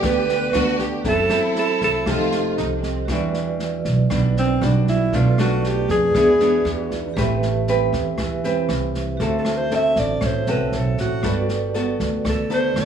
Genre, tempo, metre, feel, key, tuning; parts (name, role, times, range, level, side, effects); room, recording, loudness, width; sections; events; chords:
bossa nova; 118 BPM; 4/4; straight; E minor; A4 = 442 Hz
breathy alto saxophone; melody; 0.0-12.8 s; C4 to E5; -21 LUFS; right 1 dB
warm symphonic violin section; second line; 0.0-3.1 s; C4 to G4; -27 LUFS; left 1 dB
nylon-string guitar; accompaniment; 0.0-12.8 s; A2 to B4; -24 LUFS; left 1 dB
vibraphone with medium hard mallets; accompaniment; 0.0-12.8 s; F4 to F#5; -27 LUFS; right 5 dB
upright bass; bass; 0.0-12.8 s; F1 to F2; -23 LUFS; right 2 dB
open jazz drum kit; drums; 0.0-12.8 s; kick drum, rim click, snare drum; -30 LUFS; right 1 dB
light reverb; studio reverb; -18 LUFS; side -8 dB against mid
0.0-3.1 A section; 3.1-12.8 B section
alto saxophone solo 3.1-12.8
0.0 Gmaj7; 1.1 F#m7b5; 2.1 F9; 3.1 Em9; 5.1 Bm7b5; 6.1 E7; 7.2 Am9; 9.2 D7; 11.2 Gmaj9